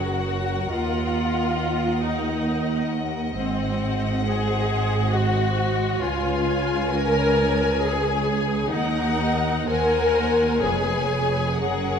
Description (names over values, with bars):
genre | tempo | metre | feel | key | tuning
classical, slow romantic movement for string orchestra | 60-70 BPM | 3/4 | rubato | unclear | A4 = 444 Hz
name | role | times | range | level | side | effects
warm symphonic violin section | melody | 0.0-12.0 s | F#5 to G#5 | -30 LUFS | left 6 dB | none
warm symphonic violin section | second line | 0.0-12.0 s | A#4 to F#5 | -31 LUFS | left 3 dB | none
rich symphonic viola section | accompaniment | 0.0-12.0 s | B#3 to A#4 | -24 LUFS | left 1 dB | none
rich symphonic cello section | bass | 0.0-12.0 s | C#2 to G#2 | -27 LUFS | right 3 dB | none
rich symphonic double bass section | bass | 0.0-12.0 s | E#1 to D#2 | -28 LUFS | right 3 dB | none
room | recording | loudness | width
moderate concert hall reverb, RT60 2.3 s | dark, warm production | -20 LUFS | side -7 dB against mid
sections
0.0-12.0 A section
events
none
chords
0.0 F#; 0.7 D#m; 3.4 G#7; 6.0 C#7; 8.7 D#m; 9.7 G#7/D#; 10.6 C#7/E#